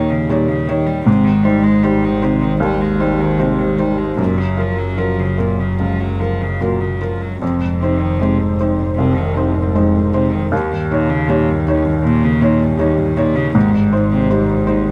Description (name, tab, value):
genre	neoclassical piano and strings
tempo	74-81 BPM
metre	4/4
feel	rubato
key	unclear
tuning	A4 = 440 Hz
part	clear cello	second line	0.0-14.9 s	Eb2 to Ab3	-23 LUFS	equal	none
part	felt-muted upright piano	accompaniment	0.0-14.9 s	C2 to Db5	-18 LUFS	equal	none
part	dark double bass	bass	0.0-14.9 s	F1 to Eb2	-23 LUFS	equal	none
room	moderate stone room reverb, RT60 1.2 s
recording	band playing live in one room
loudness	-16 LUFS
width	mono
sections	0.0-14.9 A section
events	none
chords	0.0 Eb7; 1.1 Abmaj7; 4.2 Gbmaj7; 7.4 Fm7; 10.5 Eb7; 13.6 Abmaj7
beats	0.31 | 1.07 1.84 2.61 3.39 | 4.18 4.99 5.80 6.61 | 7.42 8.20 8.98 9.75 | 10.52 11.29 12.04 12.79 | 13.55 14.30